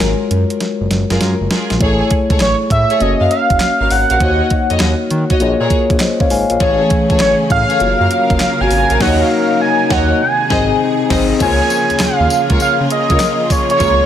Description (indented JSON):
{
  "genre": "R&B, new jack swing",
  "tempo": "100 BPM",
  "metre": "4/4",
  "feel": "swing 66% on 16ths",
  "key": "Db major",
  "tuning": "A4 = 441 Hz",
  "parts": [
    { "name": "mellow tine electric piano", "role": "accompaniment", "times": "0.0-14.1 s", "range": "E3 to Ab5", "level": "-17 LUFS", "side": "left 4 dB", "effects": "none" },
    { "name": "dark studio string section", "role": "stabs", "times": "0.0-14.1 s", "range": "F4 to F5", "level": "-21 LUFS", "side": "left 1 dB", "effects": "none" },
    { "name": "smooth synth bass", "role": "bass", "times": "0.0-14.0 s", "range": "Gb1 to Eb3", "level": "-18 LUFS", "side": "right 1 dB", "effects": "none" },
    { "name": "crisp 8-bit digital drum machine", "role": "drums", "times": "0.0-14.0 s", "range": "crash cymbal, handclaps, hi-hat, kick drum, snare drum, tambourine", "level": "-18 LUFS", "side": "right 1 dB", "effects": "overdrive" },
    { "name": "octave-doubled lead", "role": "melody", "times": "2.4-14.1 s", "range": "C#5 to Ab5", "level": "-16 LUFS", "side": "right 1 dB", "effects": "chorus, phaser" },
    { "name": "bright studio string section", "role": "sustained chords", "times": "6.6-14.1 s", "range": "C3 to F5", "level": "-22 LUFS", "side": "right 2 dB", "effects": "none" }
  ],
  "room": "light reverb, digital ambience",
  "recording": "none",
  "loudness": "-11 LUFS",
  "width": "side -10 dB against mid",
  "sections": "0.0-1.8 A section; 1.8-11.4 B section; 11.4-14.1 C section",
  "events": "drum fill 0.6-1.8; band accent 9.0-11.4",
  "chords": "0.0 Gbmaj9; 1.8 Amaj7; 3.0 Gbmaj7; 4.2 Ebm7; 5.4 Bbm7; 6.6 Amaj7; 7.8 Gbmaj7; 9.0 Ebm7; 10.2 Ab; 11.4 Db6"
}